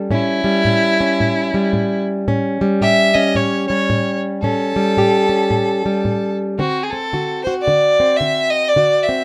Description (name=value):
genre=acoustic country blues, solo or duo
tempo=111 BPM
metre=4/4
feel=swing 60% on 8ths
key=A mixolydian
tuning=A4 = 440 Hz
part: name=fingerpicked plugged-in steel-string acoustic guitar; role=accompaniment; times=0.0-9.2 s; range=A2 to G4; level=-20 LUFS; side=equal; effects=none
part: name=rich fiddle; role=melody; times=0.1-9.2 s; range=E4 to E5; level=-19 LUFS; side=equal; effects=none
room=light reverb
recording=none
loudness=-17 LUFS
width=mono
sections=0.0-9.2 A section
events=none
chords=0.0 A7; 6.6 D7